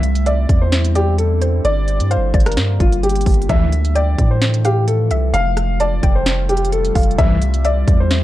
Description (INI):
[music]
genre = hip hop, trap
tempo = 130 BPM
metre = 4/4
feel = half-time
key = unclear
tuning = A4 = 441 Hz
[part]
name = dark grand piano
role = melody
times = 0.0-8.2 s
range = F4 to F5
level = -20 LUFS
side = left 1 dB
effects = low-pass filter, tape echo
[part]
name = deep dark ambient pad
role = sustained chords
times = 0.0-8.2 s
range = C3 to F4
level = -26 LUFS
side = left 1 dB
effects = chorus, built-in reverb
[part]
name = long sustained 808-style bass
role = bass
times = 0.0-8.2 s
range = F1 to A2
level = -17 LUFS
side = equal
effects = none
[part]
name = trap drum kit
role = drums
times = 0.0-8.2 s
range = hi-hat, kick drum, rim click, snare drum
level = -17 LUFS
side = equal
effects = none
[part]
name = soft round pluck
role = second line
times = 0.3-8.2 s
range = C5 to A5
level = -28 LUFS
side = left 2 dB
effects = chorus, tape echo
[part]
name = big bright polysynth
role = stabs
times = 3.5-3.7, 7.2-7.4 s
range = A1 to E3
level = -22 LUFS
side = right 1 dB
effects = none
[sound]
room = little or no reverb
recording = dark, warm production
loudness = -13 LUFS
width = side -15 dB against mid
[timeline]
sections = 0.0-8.2 A section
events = none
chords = 0.0 Cadd9; 1.6 Gm7; 3.5 Dmadd9; 5.3 Fadd9; 7.2 Cadd9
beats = 0.26 0.72 1.19 | 1.65 2.11 2.57 3.03 | 3.49 3.95 4.42 4.88 | 5.34 5.80 6.26 6.72 | 7.18 7.65 8.11